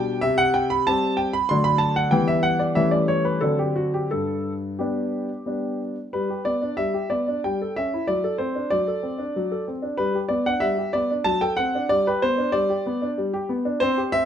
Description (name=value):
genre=classical-period piano sonatina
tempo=94 BPM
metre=3/4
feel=rubato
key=G major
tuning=A4 = 440 Hz
part: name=warm grand piano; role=solo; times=0.0-14.3 s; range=G2 to C6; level=-21 LUFS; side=equal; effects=none
room=moderate recital hall reverb, RT60 1.2 s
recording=close, detailed microphones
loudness=-21 LUFS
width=side -9 dB against mid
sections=0.0-6.1 A section; 6.1-14.3 A section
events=none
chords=0.2 C5; 1.5 D; 2.1 Em; 2.8 A7/E; 3.4 D7; 4.1 G; 7.4 A7/G; 8.1 D7/F#; 10.0 G; 11.3 D7/F#; 11.9 G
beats=| 0.23 0.86 1.50 | 2.12 2.76 3.42 | 4.10 4.78 5.46 | 6.13 6.78 7.43 | 8.07 8.72 9.36 | 10.00 10.64 11.28 | 11.91 12.54 13.17 | 13.80